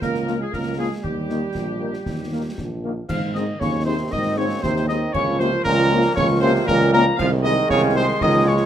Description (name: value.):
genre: military-style march for wind band.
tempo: 117 BPM.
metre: 2/4.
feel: straight.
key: Ab major.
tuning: A4 = 439 Hz.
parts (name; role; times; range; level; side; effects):
mellow cornet; melody; 0.0-8.7 s; G4 to F5; -26 LUFS; right 1 dB; none.
clear euphonium; second line; 0.0-8.7 s; Bb2 to Bb3; -26 LUFS; right 4 dB; none.
clear woodwind section; second line; 0.0-8.6 s; G4 to F5; -30 LUFS; equal; none.
warm tuba; bass; 0.0-8.6 s; Bb1 to Ab2; -22 LUFS; right 2 dB; none.
concert snare drum, concert bass drum and clash cymbals; drums; 0.0-8.7 s; none; -30 LUFS; equal; none.
warm trombone section; sustained chords; 0.2-8.7 s; Eb3 to C4; -27 LUFS; equal; none.
mellow French horn section; accompaniment; 0.3-8.6 s; Ab3 to Ab4; -25 LUFS; left 5 dB; none.
wooden piccolo; second line; 3.1-8.7 s; Bb5 to F6; -25 LUFS; left 4 dB; none.
room: light reverb.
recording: none.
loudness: -18 LUFS.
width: side -10 dB against mid.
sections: 0.0-3.1 A section; 3.1-8.7 B section.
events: none.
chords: 0.0 Bbm/Db; 1.0 Eb; 3.1 Ab; 5.1 Bbm/Db; 7.2 Ab/C.